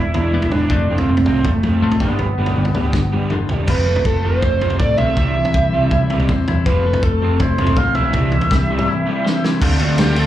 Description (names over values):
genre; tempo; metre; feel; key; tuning
indie rock; 161 BPM; 4/4; straight; unclear; A4 = 445 Hz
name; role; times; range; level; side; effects
overdriven synth lead; melody; 0.0-10.3 s; A3 to F5; -20 LUFS; right 2 dB; distortion, phaser, slapback echo, analog delay
twelve-string electric guitar; riff; 0.0-10.3 s; G2 to F4; -23 LUFS; left 6 dB; slapback echo
hollow-body short-scale picked electric bass; bass; 0.0-10.3 s; E1 to G2; -19 LUFS; equal; none
crunchy overdriven guitar; riff; 0.1-10.3 s; F2 to G4; -24 LUFS; right 5 dB; analog chorus, analog delay
loose indie drum kit; drums; 0.1-10.3 s; crash cymbal, kick drum, ride cymbal, snare drum, toms; -20 LUFS; equal; none
room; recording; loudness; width
light reverb; live gig heard through the venue's PA, club reverb; -14 LUFS; side -12 dB against mid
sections
0.0-3.7 A section; 3.7-9.6 B section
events
drum fill 2.9-3.7, 9.3-9.6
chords
0.0 E7; 0.7 F; 2.0 G7; 3.7 F; 5.2 C; 6.7 Fmaj7; 8.1 C; 9.6 Dm7